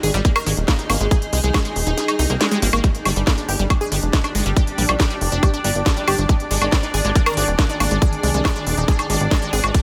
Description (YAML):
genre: psychedelic trance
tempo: 139 BPM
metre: 4/4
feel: straight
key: unclear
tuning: A4 = 440 Hz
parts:
  - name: unison pluck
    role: riff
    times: 0.0-9.8 s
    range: G3 to Bb4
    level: -27 LUFS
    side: equal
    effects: sidechain pumping, dub echo
  - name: plucky analog bass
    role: bass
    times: 0.0-9.7 s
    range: Eb1 to C2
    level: -23 LUFS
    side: equal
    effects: tube saturation
  - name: garage drum kit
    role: drums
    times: 0.0-9.8 s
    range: hi-hat, ride cymbal, snare drum, woodblock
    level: -25 LUFS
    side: equal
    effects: none
  - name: granular cloud pad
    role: texture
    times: 0.0-9.8 s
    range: Eb3 to Ab5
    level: -31 LUFS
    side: equal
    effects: built-in reverb, sidechain pumping
  - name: electronic kick drum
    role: drums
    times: 0.2-9.8 s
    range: none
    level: -20 LUFS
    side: equal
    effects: none
  - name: swell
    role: sound effects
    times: 2.1-2.8 s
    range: none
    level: -35 LUFS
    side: equal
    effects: none
  - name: bubbling stepped-filter texture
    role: sustained chords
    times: 3.1-9.8 s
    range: D4 to D5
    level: -28 LUFS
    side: equal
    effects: chorus, built-in reverb, sidechain pumping
room: light reverb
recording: none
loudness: -19 LUFS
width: mono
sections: 0.0-9.8 A section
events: kick drops out 2.0-2.8; swell 2.1-2.8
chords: 0.0 Ab5; 2.8 G5; 6.3 Ab5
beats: 0.25 0.68 | 1.11 1.54 1.98 2.41 | 2.84 3.27 3.70 4.13 | 4.57 5.00 5.43 5.86 | 6.29 6.72 7.16 7.59 | 8.02 8.45 8.88 9.31 | 9.74